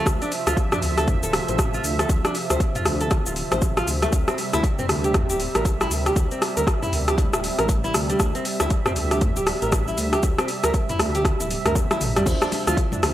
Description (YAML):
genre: afro house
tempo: 118 BPM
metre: 4/4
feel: swing 60% on 16ths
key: unclear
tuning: A4 = 439 Hz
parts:
  - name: warm analog pad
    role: sustained chords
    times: 0.0-13.1 s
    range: C3 to E5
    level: -29 LUFS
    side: right 2 dB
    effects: chorus, tremolo, sidechain pumping
  - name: nylon-string guitar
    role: arpeggios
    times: 0.0-13.0 s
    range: G3 to C5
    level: -27 LUFS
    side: equal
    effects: sidechain pumping, analog delay
  - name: dark detuned saw bass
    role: bass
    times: 0.1-13.1 s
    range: D1 to D2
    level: -27 LUFS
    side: equal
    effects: sidechain pumping
  - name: deep house drum kit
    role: drums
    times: 0.1-13.1 s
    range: crash cymbal, hi-hat, rim click, shaker, toms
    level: -24 LUFS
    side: equal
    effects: overdrive
  - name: electronic kick drum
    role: drums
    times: 0.1-12.9 s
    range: none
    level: -22 LUFS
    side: equal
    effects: overdrive
  - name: deep mellow chord stab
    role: stabs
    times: 12.3-13.1 s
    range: D4 to C5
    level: -32 LUFS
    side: equal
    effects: chorus, sidechain pumping, analog delay
  - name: congas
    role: percussion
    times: 12.3-13.1 s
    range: none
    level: -33 LUFS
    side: left 2 dB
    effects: none
room: little or no reverb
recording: dry, gritty hardware recording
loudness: -19 LUFS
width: side -13 dB against mid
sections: 0.0-13.1 A section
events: drum fill 11.8-12.3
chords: 0.0 Dm9; 4.1 C/D; 12.3 Dm9